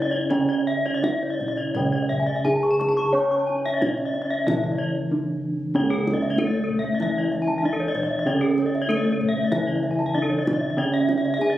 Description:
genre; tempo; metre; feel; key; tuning
Balinese gamelan; 81-96 BPM; 4/4; straight; C# pelog; A4 = 440 Hz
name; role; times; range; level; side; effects
gamelan-type bronze metallophone; melody; 0.0-11.6 s; A3 to C#5; -26 LUFS; left 1 dB; none
gamelan-type bronze metallophone; accompaniment; 0.0-11.6 s; C#3 to C#4; -32 LUFS; equal; none
gamelan-type bronze metallophone; arpeggios; 0.0-11.6 s; G#4 to C#6; -27 LUFS; left 2 dB; none
gamelan-type bronze metallophone; arpeggios; 0.0-11.3 s; A4 to C#6; -32 LUFS; right 1 dB; none
gamelan-type bossed gongs; bass; 0.0-11.6 s; C#2 to C#5; -26 LUFS; right 2 dB; none
kendang; percussion; 0.1-11.6 s; none; -31 LUFS; equal; none
room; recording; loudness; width
moderate recital hall reverb, RT60 1.6 s; recorded on a phone in the room, club reverb, compression; -20 LUFS; side -13 dB against mid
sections
0.0-5.8 A section; 5.8-11.6 B section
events
break 4.8-5.8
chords
none

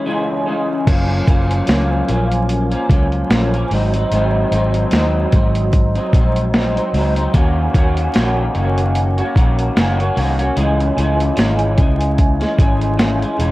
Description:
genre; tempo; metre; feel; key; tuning
indie pop, bedroom pop; 74 BPM; 4/4; swing 55% on 16ths; Gb lydian; A4 = 442 Hz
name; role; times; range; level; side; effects
electric guitar through a small old amp; accompaniment; 0.0-13.5 s; Gb2 to Gb4; -18 LUFS; equal; ensemble chorus, vibrato effect
vintage muted fingered electric bass; bass; 0.9-13.5 s; Fb1 to Eb2; -18 LUFS; equal; tube saturation
boom bap sampler-style drum kit; drums; 0.9-13.5 s; crash cymbal, hi-hat, kick drum, snare drum; -16 LUFS; equal; none
room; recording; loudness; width
moderate studio reverb, RT60 0.6 s; worn, warbling old tape, cassette tape, vinyl crackle, warbly pitch drift; -13 LUFS; side -18 dB against mid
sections
0.9-13.5 A section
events
break 0.0-0.9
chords
0.0 Dbm; 0.9 Gbmaj7; 3.7 Ab7; 7.3 Ebm7; 10.6 Dbm

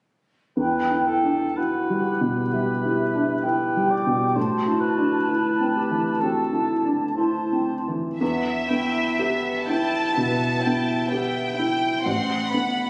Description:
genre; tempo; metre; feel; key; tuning
cinematic; 63 BPM; 4/4; uneven beats, rubato; E minor; A4 = 440 Hz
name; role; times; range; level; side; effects
mellow clarinet; second line; 0.6-7.9 s; E4 to G4; -32 LUFS; equal; none
mellow cor anglais; second line; 0.6-7.8 s; A4 to D5; -31 LUFS; equal; none
mellow small flute group; second line; 0.6-7.9 s; E5 to A5; -29 LUFS; equal; none
felt-muted upright piano; accompaniment; 0.6-12.9 s; A1 to G4; -26 LUFS; equal; none
rich studio violin section; melody; 8.2-12.9 s; E5 to A5; -28 LUFS; equal; none
rich studio violin section; second line; 8.2-12.9 s; B3 to C6; -30 LUFS; equal; none
room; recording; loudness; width
moderate recital hall reverb, RT60 1.4 s; recorded on a phone in the room, studio reverb; -23 LUFS; mono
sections
0.6-8.2 A section; 8.2-12.9 B section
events
none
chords
0.6 Em; 4.4 Amadd9; 8.2 Em; 12.1 Amadd9

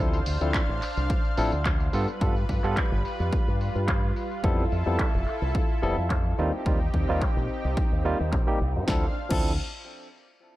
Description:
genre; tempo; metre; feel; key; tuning
nu-disco, nu disco; 108 BPM; 4/4; swing 53% on 16ths; D dorian; A4 = 440 Hz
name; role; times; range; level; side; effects
barky tine electric piano; accompaniment; 0.0-9.5 s; F3 to A4; -30 LUFS; equal; medium stereo tremolo, tape echo
lush unison pad; sustained chords; 0.0-9.1 s; G3 to F5; -33 LUFS; equal; chorus, sidechain pumping
fingered electric bass with an envelope filter; bass; 0.0-9.6 s; F1 to G2; -28 LUFS; equal; tube saturation, sidechain pumping
house drum kit; drums; 0.1-9.4 s; crash cymbal, handclaps, hi-hat, snare drum, tambourine; -35 LUFS; left 1 dB; low-pass filter on hats, small room ambience, low-pass filter on perc, low-pass filter on snare, low-pass filter on cymbals
electronic kick drum; drums; 0.5-9.4 s; none; -27 LUFS; equal; small room ambience
room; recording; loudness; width
little or no reverb; none; -23 LUFS; side -16 dB against mid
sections
0.0-8.9 A section; 8.9-10.6 B section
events
filter sweep on drum 0.0-8.9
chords
0.0 Dm7; 1.9 G7; 4.4 Fmaj9#11; 6.4 Eb6; 8.9 Dm7

